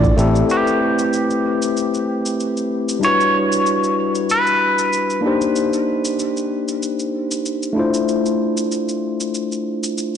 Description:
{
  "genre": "sunset chillout",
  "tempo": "95 BPM",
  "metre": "4/4",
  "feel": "swing 54% on 16ths",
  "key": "A minor",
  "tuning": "A4 = 440 Hz",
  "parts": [
    { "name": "tine electric piano", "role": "accompaniment", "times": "0.0-10.2 s", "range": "G3 to D5", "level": "-18 LUFS", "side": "moving between left 4 dB and right 3 dB", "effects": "auto-pan, tape echo" },
    { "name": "buzzing kalimba", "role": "arpeggios", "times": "0.0-0.5 s", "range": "A4", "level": "-30 LUFS", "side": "right 3 dB", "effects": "none" },
    { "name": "shaker", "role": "drums", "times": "0.0-10.1 s", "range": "none", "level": "-29 LUFS", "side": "equal", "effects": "soft clipping on snare, small room ambience" },
    { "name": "twangy electric guitar", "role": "melody", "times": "0.5-5.2 s", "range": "G4 to C#5", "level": "-19 LUFS", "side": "equal", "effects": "tape echo" }
  ],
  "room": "moderate lush hall reverb, RT60 1.9 s",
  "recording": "blown-out, overdriven recording, overdrive, nothing above 10.7 kHz",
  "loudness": "-16 LUFS",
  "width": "side -8 dB against mid",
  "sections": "0.5-10.2 A section",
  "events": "none",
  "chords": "0.5 Am9; 3.0 Em9; 5.2 Cm9; 7.8 Dm9",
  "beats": "| 0.50 1.13 1.76 2.39 | 3.02 3.65 4.29 4.92 | 5.55 6.18 6.81 7.44 | 8.07 8.71 9.34 9.97"
}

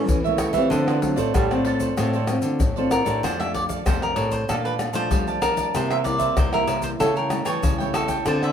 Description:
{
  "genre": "samba and choro",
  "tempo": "95 BPM",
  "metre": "4/4",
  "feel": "straight",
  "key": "D minor, F major from 3.2 s",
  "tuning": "A4 = 442 Hz",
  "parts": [
    { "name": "mellow trombone", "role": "second line", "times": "0.0-1.5 s", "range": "E3 to C#4", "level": "-27 LUFS", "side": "right 4 dB", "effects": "none" },
    { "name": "nylon-string guitar", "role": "accompaniment", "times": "0.0-8.5 s", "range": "G2 to A4", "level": "-27 LUFS", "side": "left 2 dB", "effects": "none" },
    { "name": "nylon-string guitar", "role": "bass", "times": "0.0-8.5 s", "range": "F2 to G3", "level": "-26 LUFS", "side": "equal", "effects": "none" },
    { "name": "egg shaker, surdo, pandeiro, tamborim and agogo bells", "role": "percussion", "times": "0.1-8.5 s", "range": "none", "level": "-25 LUFS", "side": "left 1 dB", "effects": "none" },
    { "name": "cavaquinho", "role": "accompaniment", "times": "0.2-8.5 s", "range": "D4 to A5", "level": "-28 LUFS", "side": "right 8 dB", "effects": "none" },
    { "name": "cavaquinho", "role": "melody", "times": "2.9-8.5 s", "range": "A4 to E5", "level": "-25 LUFS", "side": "left 1 dB", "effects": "none" }
  ],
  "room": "wet studio reverb, RT60 0.7 s",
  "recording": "band playing live in one room",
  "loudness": "-20 LUFS",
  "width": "side -8 dB against mid",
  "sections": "0.0-3.2 A section; 3.2-8.5 B section",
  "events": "trombone solo 0.0-3.2",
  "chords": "0.0 A; 0.7 Dm7; 3.2 F69; 4.5 Bbmaj7; 5.7 C7; 7.0 A7/C#",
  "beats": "0.09 | 0.71 1.34 1.97 2.60 | 3.23 3.86 4.49 5.12 | 5.75 6.37 7.00 7.63 | 8.26"
}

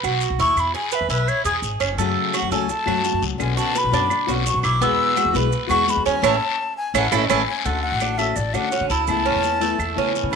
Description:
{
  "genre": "latin, Cuban son and guajira",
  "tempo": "169 BPM",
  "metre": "4/4",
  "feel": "straight",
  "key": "A major",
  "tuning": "A4 = 440 Hz",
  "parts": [
    { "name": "Cuban tres", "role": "arpeggios", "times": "0.0-10.4 s", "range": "A3 to B4", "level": "-23 LUFS", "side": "right 10 dB", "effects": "slapback echo" },
    { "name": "upright bass", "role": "bass", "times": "0.0-10.4 s", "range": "F#1 to D3", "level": "-26 LUFS", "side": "left 1 dB", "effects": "none" },
    { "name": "claves", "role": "percussion", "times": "0.0-10.4 s", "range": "none", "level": "-29 LUFS", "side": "right 10 dB", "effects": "none" },
    { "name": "maracas", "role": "percussion", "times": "0.0-10.4 s", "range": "none", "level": "-36 LUFS", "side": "right 15 dB", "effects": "none" },
    { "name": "guiro", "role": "percussion", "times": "0.2-10.4 s", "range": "none", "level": "-30 LUFS", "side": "left 15 dB", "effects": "none" },
    { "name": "breathy jazz flute", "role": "melody", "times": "0.4-10.4 s", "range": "G#4 to E6", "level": "-23 LUFS", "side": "left 2 dB", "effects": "none" },
    { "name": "nylon-string guitar", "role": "accompaniment", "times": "2.0-10.4 s", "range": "B2 to F#4", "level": "-26 LUFS", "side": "left 14 dB", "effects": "none" }
  ],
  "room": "moderate echo chamber reverb, RT60 1.4 s",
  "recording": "1960s-style stereo with parts hard left and right",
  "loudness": "-18 LUFS",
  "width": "side -6 dB against mid",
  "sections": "0.0-7.7 A section; 7.7-10.4 B section",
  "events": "flute solo 0.0-7.7; band accent 6.2-7.7",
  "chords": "0.0 B; 0.6 E; 2.0 F#m; 3.4 Bmadd9; 4.8 Eadd9; 6.2 A; 7.7 Dmaj7; 9.1 Aadd9/C#",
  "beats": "0.22 | 0.57 0.93 1.28 1.64 | 1.99 2.34 2.70 3.05 | 3.40 3.76 4.11 4.47 | 4.82 5.17 5.53 5.88 | 6.24 6.59 6.95 7.30 | 7.66 8.02 8.37 8.73 | 9.08 9.44 9.80 10.15"
}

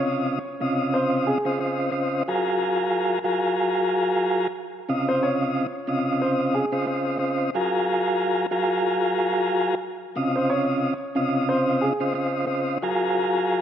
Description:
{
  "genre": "hip hop",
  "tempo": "91 BPM",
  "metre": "4/4",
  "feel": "swing 56% on 16ths",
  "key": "Db major",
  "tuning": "A4 = 440 Hz",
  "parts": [
    { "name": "warm upright piano", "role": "melody", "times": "0.0-12.3 s", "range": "Ab4 to Db5", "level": "-28 LUFS", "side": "equal", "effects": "high-pass filter, low-pass filter, tape echo" },
    { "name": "tonewheel organ", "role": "accompaniment", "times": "0.0-13.6 s", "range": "C3 to Eb5", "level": "-22 LUFS", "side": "equal", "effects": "fast rotary speaker, cassette tape, high-pass filter, low-pass filter" }
  ],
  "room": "moderate lush hall reverb, RT60 2.6 s",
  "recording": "rough home demo mix",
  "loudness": "-21 LUFS",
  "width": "side -9 dB against mid",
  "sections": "0.0-13.6 A section",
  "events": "none",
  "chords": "0.0 Dbmaj9; 2.3 Gbmaj9; 4.9 Dbmaj9; 7.5 Gbmaj9; 10.2 Dbmaj9; 12.8 Gbmaj9",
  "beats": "0.28 0.94 1.60 | 2.26 2.92 3.58 4.24 | 4.90 5.56 6.22 6.88 | 7.54 8.19 8.85 9.51 | 10.17 10.83 11.49 12.15 | 12.81 13.47"
}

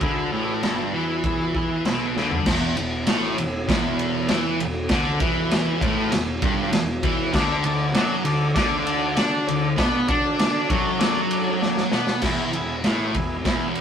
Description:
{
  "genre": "garage rock duo or trio",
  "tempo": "98 BPM",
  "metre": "4/4",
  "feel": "straight",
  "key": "E mixolydian",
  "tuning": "A4 = 438 Hz",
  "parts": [
    { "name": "overdriven combo organ", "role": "sustained chords", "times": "0.0-2.4, 7.3-13.8 s", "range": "D4 to E5", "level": "-29 LUFS", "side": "left 2 dB", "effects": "none" },
    { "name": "thick fuzz guitar", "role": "riff", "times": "0.0-13.8 s", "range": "E2 to D4", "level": "-23 LUFS", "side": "equal", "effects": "distortion" },
    { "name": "overdriven picked electric bass", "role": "bass", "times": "0.0-13.8 s", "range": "E1 to D3", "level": "-33 LUFS", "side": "equal", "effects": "tube saturation" },
    { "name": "raw garage drum kit", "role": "drums", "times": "0.0-13.8 s", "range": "crash cymbal, kick drum, ride cymbal, snare drum, toms", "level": "-24 LUFS", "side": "equal", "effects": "none" }
  ],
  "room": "moderate stone room reverb, RT60 1.0 s",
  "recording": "rough rehearsal-room recording",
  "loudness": "-20 LUFS",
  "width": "side -8 dB against mid",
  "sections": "0.0-2.5 A section; 2.5-12.2 B section; 12.2-13.8 C section",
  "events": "drum fill 2.2-2.5, 11.6-12.2",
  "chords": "0.0 E; 2.5 Esus4; 7.3 D5; 12.2 E",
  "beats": "| 0.01 0.63 1.24 1.85 | 2.46 3.07 3.68 4.29 | 4.90 5.51 6.12 6.73 | 7.34 7.96 8.56 9.18 | 9.79 10.40 11.01 11.62 | 12.23 12.85 13.46"
}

